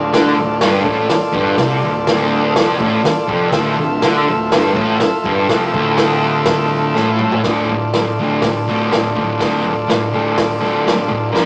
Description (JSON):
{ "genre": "garage rock duo or trio", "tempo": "123 BPM", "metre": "4/4", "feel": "straight", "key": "D minor", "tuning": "A4 = 440 Hz", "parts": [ { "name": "combo organ", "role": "sustained chords", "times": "0.0-11.5 s", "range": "F4 to E5", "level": "-21 LUFS", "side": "equal", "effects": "none" }, { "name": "thick fuzz guitar", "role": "riff", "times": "0.0-11.5 s", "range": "D2 to Bb3", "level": "-20 LUFS", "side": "equal", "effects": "distortion" }, { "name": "fuzz picked electric bass", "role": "bass", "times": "0.0-11.5 s", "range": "D1 to D2", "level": "-26 LUFS", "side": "equal", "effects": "overdrive" }, { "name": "vintage drum kit", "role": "drums", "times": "0.1-11.5 s", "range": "hi-hat, kick drum, snare drum, toms", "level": "-21 LUFS", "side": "equal", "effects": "none" } ], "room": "wet booth ambience, RT60 0.2 s", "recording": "rough rehearsal-room recording, warm saturation, small speaker sound", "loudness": "-16 LUFS", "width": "mono", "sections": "0.0-7.5 A section; 7.5-11.5 B section", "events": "drum fill 7.0-7.5", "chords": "0.0 Dm" }